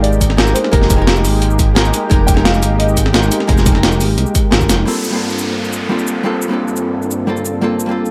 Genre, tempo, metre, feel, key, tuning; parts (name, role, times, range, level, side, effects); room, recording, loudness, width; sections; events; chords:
liquid drum and bass; 174 BPM; 4/4; straight; G phrygian; A4 = 440 Hz
dark baby grand piano; melody; 0.0-4.5 s; Bb4 to G5; -24 LUFS; equal; digital delay
vintage hollow-body jazz guitar; accompaniment; 0.0-8.1 s; G3 to Bb4; -21 LUFS; equal; digital delay
lush unison pad; sustained chords; 0.0-8.1 s; G2 to A4; -25 LUFS; equal; chorus
smooth synth bass; bass; 0.0-4.8 s; F1 to C2; -18 LUFS; equal
breakbeat sampler-style drum kit; drums; 0.0-8.1 s; cabasa, hi-hat, snare drum; -19 LUFS; equal; overdrive
electronic kick drum; drums; 0.2-4.7 s; -17 LUFS; equal
downlifter; sound effects; 4.9-7.6 s; -26 LUFS; equal
light reverb, digital ambience; -14 LUFS; mono
0.0-4.9 A section; 4.9-8.1 B section
drop 0.0-4.9; drum fill 4.7
0.0 Fm11; 4.9 Gm11